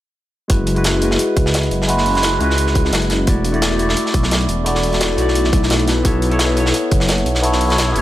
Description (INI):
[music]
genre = liquid drum and bass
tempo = 173 BPM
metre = 4/4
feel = swing 54% on 16ths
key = F# minor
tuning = A4 = 440 Hz
[part]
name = barky tine electric piano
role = accompaniment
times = 0.5-8.0 s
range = G#3 to D5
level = -18 LUFS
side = equal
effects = phaser, low-pass filter, analog delay
[part]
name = swelling detuned saw bass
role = bass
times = 0.5-8.0 s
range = E1 to C#2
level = -18 LUFS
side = equal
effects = none
[part]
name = crunchy breakbeat drum kit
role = drums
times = 0.5-8.0 s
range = hi-hat, snare drum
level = -21 LUFS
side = equal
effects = high-pass filter on hats, high-pass filter on snare, high-pass filter on room
[part]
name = electronic hi-hat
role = drums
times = 0.5-8.0 s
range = none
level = -28 LUFS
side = left 1 dB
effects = none
[part]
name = electronic kick drum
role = drums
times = 0.5-7.0 s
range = none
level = -16 LUFS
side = equal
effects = none
[sound]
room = light reverb, studio ambience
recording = echo-heavy mix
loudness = -14 LUFS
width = side -14 dB against mid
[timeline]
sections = 0.5-8.0 A section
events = filter sweep on tine electric piano 0.5-8.0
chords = 0.5 F#9sus4; 3.3 E9sus4; 5.9 B9sus4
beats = | 0.50 0.85 1.19 1.54 | 1.89 2.23 2.58 2.93 | 3.27 3.62 3.97 4.32 | 4.66 5.01 5.36 5.70 | 6.05 6.40 6.74 7.09 | 7.44 7.78